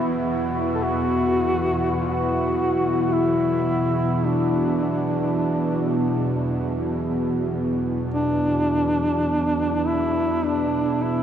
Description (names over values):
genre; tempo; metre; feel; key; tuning
ambient; free time; none; none; unclear; A4 = 443 Hz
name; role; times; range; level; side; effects
mellow duduk; melody; 0.0-11.2 s; D4 to A4; -24 LUFS; equal; tape echo
deep dark ambient pad; sustained chords; 0.0-11.2 s; B3 to F#4; -26 LUFS; left 1 dB; chorus, built-in reverb
warm grand piano; arpeggios; 0.0-11.2 s; B3; -38 LUFS; right 1 dB; none
bowed-like drone; drone; 0.0-11.2 s; E2 to B2; -24 LUFS; right 1 dB; built-in reverb
room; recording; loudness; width
wet huge ambient reverb, RT60 7.9 s; none; -20 LUFS; side -9 dB against mid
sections
0.0-11.2 A section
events
none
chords
0.0 Esus2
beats
free time